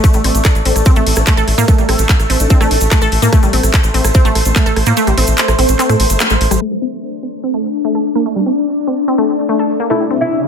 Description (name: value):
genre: psychedelic trance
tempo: 146 BPM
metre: 4/4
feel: straight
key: unclear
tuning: A4 = 440 Hz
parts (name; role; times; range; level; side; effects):
- bubbling stepped-filter texture; sustained chords; 0.0-10.5 s; A3 to D5; -18 LUFS; left 2 dB; chorus, built-in reverb, sidechain pumping
- wide unison pluck; riff; 0.0-10.2 s; G3 to A4; -17 LUFS; moving between left 5 dB and right 6 dB; auto-pan, sidechain pumping, dub echo
- electronic kick drum; drums; 0.0-4.6 s; none; -10 LUFS; equal; studio reverb
- garage drum kit; drums; 0.0-6.7 s; crash cymbal, handclaps, hi-hat, rim click; -18 LUFS; equal; studio reverb
- cabasa; percussion; 0.0-10.4 s; none; -24 LUFS; right 2 dB; none
- round analog bass; bass; 0.1-6.6 s; G1 to A2; -14 LUFS; equal; none
- formant-sweep wobble bass; second line; 1.2-6.2 s; C4 to D4; -26 LUFS; left 4 dB; none
- oud; melody; 9.9-10.4 s; E4; -19 LUFS; right 1 dB; phaser, sidechain pumping, dub echo
- riser; sound effects; 10.1-10.5 s; none; -26 LUFS; right 4 dB; none
room: light reverb, digital ambience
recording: low-pass filter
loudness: -11 LUFS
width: side -7 dB against mid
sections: 0.0-6.6 A section; 6.6-10.5 B section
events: filter sweep on synth arpeggio sound 0.0-6.6, 6.6-10.5; kick drops out 5.0-6.6; band accent 6.2; filter sweep on synth texture 6.6-10.5; riser 10.1-10.5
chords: 0.0 Gsus4 (rootless)